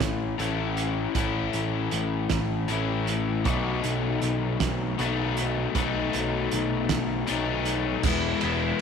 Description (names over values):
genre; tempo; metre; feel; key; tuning
indie rock; 52 BPM (dotted quarters); 6/8; straight; unclear; A4 = 439 Hz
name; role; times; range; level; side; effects
overdriven electric guitar; riff; 0.0-8.8 s; A2 to E4; -27 LUFS; left 8 dB; none
growling picked electric bass; bass; 0.0-8.7 s; E1 to B1; -29 LUFS; right 3 dB; overdrive
loose indie drum kit; drums; 0.0-8.6 s; crash cymbal, hi-hat, kick drum, ride cymbal, snare drum; -30 LUFS; right 6 dB; none
tambourine; percussion; 8.0-8.2 s; none; -42 LUFS; right 17 dB; none
room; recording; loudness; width
light reverb; 1960s-style stereo with parts hard left and right; -24 LUFS; side -6 dB against mid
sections
0.0-8.0 A section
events
none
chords
0.0 A; 3.5 B7; 8.0 E